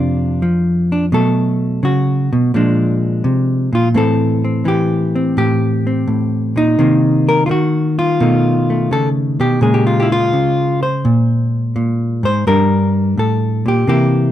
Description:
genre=solo jazz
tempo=85 BPM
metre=4/4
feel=swing 69% on 8ths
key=unclear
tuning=A4 = 439 Hz
part: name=hollow-body jazz guitar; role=solo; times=0.0-14.3 s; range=F2 to C5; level=-13 LUFS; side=equal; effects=none
room=light reverb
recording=close, detailed microphones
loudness=-13 LUFS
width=side -12 dB against mid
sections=0.0-14.3 A section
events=none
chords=0.0 F6; 1.1 B5; 2.5 Bb9; 4.0 Am7; 6.8 Cm7b5; 8.2 B7#11; 9.6 Bbm7; 12.5 Gm

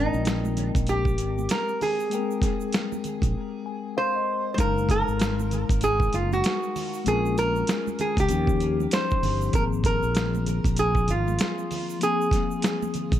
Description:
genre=hip hop, jazz-hop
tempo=97 BPM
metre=4/4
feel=swing 61% on 16ths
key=Ab major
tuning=A4 = 441 Hz
part: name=lap resonator guitar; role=melody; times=0.0-13.2 s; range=Eb4 to C5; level=-26 LUFS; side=right 1 dB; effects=tape echo
part: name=mellow tine electric piano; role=accompaniment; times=0.0-13.2 s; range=F3 to Ab5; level=-30 LUFS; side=left 9 dB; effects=medium stereo tremolo
part: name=mellow fretless electric bass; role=bass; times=0.0-13.2 s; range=Gb1 to Eb2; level=-27 LUFS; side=equal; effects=none
part: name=egg shaker and congas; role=percussion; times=0.1-13.2 s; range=none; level=-38 LUFS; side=right 14 dB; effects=none
part: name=dusty soul sampler-style drum kit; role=drums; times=0.3-13.2 s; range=hi-hat, kick drum, snare drum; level=-26 LUFS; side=right 1 dB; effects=none
room=light reverb, digital ambience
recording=dark, warm production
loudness=-22 LUFS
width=side -11 dB against mid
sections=0.0-4.6 A section; 4.6-13.2 B section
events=silent gap 3.4-4.6; tine electric piano fill 3.4-4.6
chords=0.0 Abmaj9; 4.6 Gbmaj13; 7.1 Bbm7; 8.3 Eb9; 9.5 Ab69

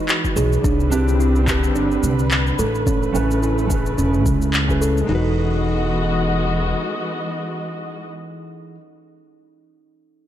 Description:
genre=sunset chillout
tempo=108 BPM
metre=4/4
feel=swing 56% on 16ths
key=E major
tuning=A4 = 440 Hz
part: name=nylon-string guitar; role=accompaniment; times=0.0-8.8 s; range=E3 to G#5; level=-25 LUFS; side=equal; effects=auto-pan, low-pass filter, digital delay
part: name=muted studio string section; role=sustained chords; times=0.0-8.1 s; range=C#3 to D#5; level=-26 LUFS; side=left 1 dB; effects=none
part: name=electronic handclaps and cabasa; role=drums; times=0.1-5.1 s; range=none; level=-24 LUFS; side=left 1 dB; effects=none
part: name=electronic kick drum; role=drums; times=0.2-4.8 s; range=none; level=-23 LUFS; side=left 1 dB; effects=overdrive
part: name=buzzing kalimba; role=arpeggios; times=0.4-5.3 s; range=C#4 to A4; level=-25 LUFS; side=right 3 dB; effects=low-pass filter, digital delay
part: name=upright bass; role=bass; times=0.4-6.7 s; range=E1 to C#2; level=-20 LUFS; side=equal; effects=none
room=light reverb, studio reverb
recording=dark, warm production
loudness=-17 LUFS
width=side -11 dB against mid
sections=0.0-5.1 A section; 5.1-7.3 B section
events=filter sweep on upright bass 0.0-5.1; filter sweep on kalimba 0.0-5.1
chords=0.0 Emaj9; 0.6 Cmaj9; 2.6 Amaj9; 5.1 Emaj9

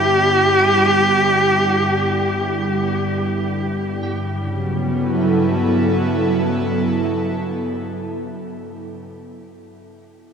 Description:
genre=ambient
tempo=free time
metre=none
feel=none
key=G lydian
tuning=A4 = 439 Hz
part: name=warm cello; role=melody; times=0.0-2.9 s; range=G4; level=-18 LUFS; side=equal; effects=ping-pong delay
part: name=airy breathy pad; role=sustained chords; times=0.0-9.5 s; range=G2 to A4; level=-19 LUFS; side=equal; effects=chorus
part: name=clean electric guitar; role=arpeggios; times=0.0-8.7 s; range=D5 to G5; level=-40 LUFS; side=left 1 dB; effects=none
room=wet cathedral reverb, RT60 5.3 s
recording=cassette tape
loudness=-16 LUFS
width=side -6 dB against mid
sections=0.0-4.0 A section; 4.0-8.7 B section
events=none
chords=0.0 G6

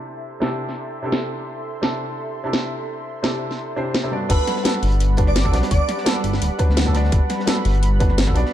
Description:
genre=liquid drum and bass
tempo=170 BPM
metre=4/4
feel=straight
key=G major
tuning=A4 = 440 Hz
part: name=felt-muted upright piano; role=accompaniment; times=0.0-8.5 s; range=G2 to D5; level=-26 LUFS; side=right 1 dB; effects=ping-pong delay
part: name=warm analog pad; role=sustained chords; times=0.0-8.5 s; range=G3 to C6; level=-30 LUFS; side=equal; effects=chorus, sidechain pumping
part: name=garage drum kit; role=drums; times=0.4-8.4 s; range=crash cymbal, hi-hat, snare drum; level=-23 LUFS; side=equal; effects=low-pass filter on snare, low-pass filter on hats, low-pass filter on cymbals
part: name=airy dreamy lead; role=melody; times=4.3-6.1 s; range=B4 to D5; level=-27 LUFS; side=equal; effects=chorus, tape echo
part: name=smooth gliding synth bass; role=bass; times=4.3-8.4 s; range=D1 to D2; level=-18 LUFS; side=equal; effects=none
part: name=crunchy breakbeat drum kit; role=drums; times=4.3-8.5 s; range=hi-hat, snare drum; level=-32 LUFS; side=equal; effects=high-pass filter on hats, high-pass filter on snare, high-pass filter on room
part: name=electronic kick drum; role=drums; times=4.3-8.3 s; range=none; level=-20 LUFS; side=equal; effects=none
room=light reverb, small room ambience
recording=dark, warm production, low-pass filter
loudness=-18 LUFS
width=side -12 dB against mid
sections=0.0-4.3 A section; 4.3-8.5 B section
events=filter sweep on analog synth pad 0.0-4.3; filter sweep 0.0-4.3; drop 4.3-8.5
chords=0.0 C6; 4.3 Gmaj7

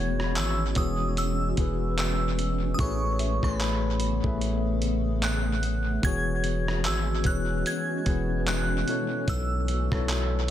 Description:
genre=contemporary R&B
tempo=74 BPM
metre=4/4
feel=swing 58% on 16ths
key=E major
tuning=A4 = 441 Hz
part: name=glassy synth bell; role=melody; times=0.0-10.5 s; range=B5 to G#6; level=-33 LUFS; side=right 1 dB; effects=chorus, tape echo
part: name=mellow tine electric piano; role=accompaniment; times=0.0-10.5 s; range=A2 to E5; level=-30 LUFS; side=left 4 dB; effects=fast stereo tremolo, tape echo
part: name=granular cloud pad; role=sustained chords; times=0.0-10.5 s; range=C#3 to G#4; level=-34 LUFS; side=right 1 dB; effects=built-in reverb, sidechain pumping
part: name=long sustained 808-style bass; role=bass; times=0.0-10.5 s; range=E1 to B1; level=-28 LUFS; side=equal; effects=none
part: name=soft round pluck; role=texture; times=0.0-5.5 s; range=E5 to C#6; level=-43 LUFS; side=equal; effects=none
part: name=dusty soul sampler-style drum kit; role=drums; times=0.2-10.5 s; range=handclaps, hi-hat, kick drum, rim click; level=-31 LUFS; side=right 1 dB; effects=tape echo
room=little or no reverb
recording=echo-heavy mix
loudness=-24 LUFS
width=side -11 dB against mid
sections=0.0-10.5 A section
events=none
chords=0.0 E69; 2.8 Amaj9; 6.0 E69; 8.9 B7sus4

